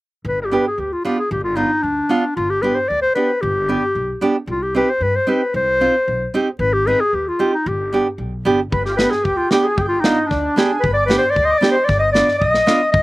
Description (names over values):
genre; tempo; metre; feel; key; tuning
klezmer; 113 BPM; 2/4; straight; G phrygian dominant; A4 = 439 Hz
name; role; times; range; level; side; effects
upright bass; bass; 0.2-13.0 s; G1 to G2; -26 LUFS; equal; none
warm clarinet; melody; 0.3-13.0 s; D4 to Eb5; -17 LUFS; left 1 dB; none
nylon-string guitar; accompaniment; 0.5-12.8 s; B3 to Ab4; -19 LUFS; right 2 dB; none
mellow accordion; second line; 8.7-13.0 s; D4 to Eb5; -24 LUFS; right 4 dB; none
modern studio drum kit; drums; 8.7-13.0 s; kick drum, snare drum; -20 LUFS; equal; none
room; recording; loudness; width
little or no reverb; recorded outdoors, with no room sound; -15 LUFS; side -19 dB against mid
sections
0.2-8.7 A section; 8.7-13.0 A section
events
none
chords
0.2 G; 4.5 Cm; 6.6 Ab; 7.7 G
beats
| 0.25 0.78 | 1.31 1.84 | 2.37 2.90 | 3.43 3.96 | 4.49 5.02 | 5.55 6.08 | 6.61 7.13 | 7.66 8.19 | 8.72 9.25 | 9.78 10.30 | 10.83 11.36 | 11.88 12.41 | 12.93